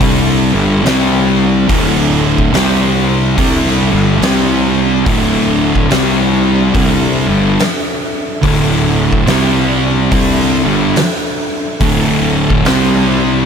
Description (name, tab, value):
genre	stoner and doom metal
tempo	71 BPM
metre	4/4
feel	swing 64% on 8ths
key	unclear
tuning	A4 = 440 Hz
part	percussive tonewheel organ	sustained chords	0.0-13.5 s	C4 to E5	-23 LUFS	left 2 dB	slow rotary speaker, chorus vibrato
part	thick fuzz guitar	riff	0.0-13.5 s	D2 to C4	-15 LUFS	left 11 dB	distortion
part	thick fuzz guitar	riff	0.0-13.5 s	D2 to C4	-15 LUFS	right 11 dB	distortion
part	fuzz fingered electric bass	bass	0.0-13.5 s	D1 to C2	-17 LUFS	equal	overdrive
part	oversized low-tuned drum kit	drums	0.0-12.9 s	hi-hat, kick drum, snare drum	-17 LUFS	equal	none
room	light reverb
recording	none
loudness	-10 LUFS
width	side -7 dB against mid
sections	0.0-13.5 A section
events	none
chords	0.0 D5; 0.8 C5; 1.7 D5; 2.5 C5; 3.4 D5; 4.2 C5; 5.1 D5; 5.9 C5; 6.7 D5; 9.3 C5; 10.1 D5; 12.6 C5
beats	0.00 0.84 | 1.69 2.53 3.37 4.21 | 5.06 5.90 6.74 7.58 | 8.43 9.27 10.12 10.96 | 11.80 12.65